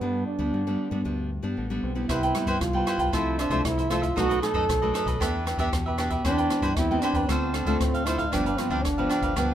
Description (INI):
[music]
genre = samba and choro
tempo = 115 BPM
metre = 4/4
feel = straight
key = C major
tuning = A4 = 436 Hz
[part]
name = breathy trombone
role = second line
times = 0.0-9.5 s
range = B3 to A4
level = -28 LUFS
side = right 3 dB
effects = none
[part]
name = nylon-string guitar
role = accompaniment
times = 0.0-9.5 s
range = F#2 to G4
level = -30 LUFS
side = left 2 dB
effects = none
[part]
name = deep dub fingered electric bass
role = bass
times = 0.0-9.5 s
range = G1 to G2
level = -31 LUFS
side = equal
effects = none
[part]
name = cavaquinho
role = accompaniment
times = 2.1-9.5 s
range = D4 to G5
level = -28 LUFS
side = right 1 dB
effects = none
[part]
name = open jazz drum kit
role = drums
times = 2.1-9.5 s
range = hi-hat, kick drum, rim click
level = -31 LUFS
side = equal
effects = none
[sound]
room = light reverb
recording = minimal, uncompressed stereo recording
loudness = -23 LUFS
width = side -10 dB against mid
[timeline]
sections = 0.0-9.5 A section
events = trombone solo 0.0-9.5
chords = 0.0 G; 2.1 Cmaj7; 3.1 Fmaj7/C; 4.2 B7; 5.2 Em7; 6.2 Cmaj7/E; 7.3 Dm7; 8.3 G7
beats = | 0.01 0.53 1.05 1.57 | 2.09 2.61 3.13 3.65 | 4.17 4.69 5.21 5.73 | 6.25 6.77 7.29 7.81 | 8.33 8.85 9.37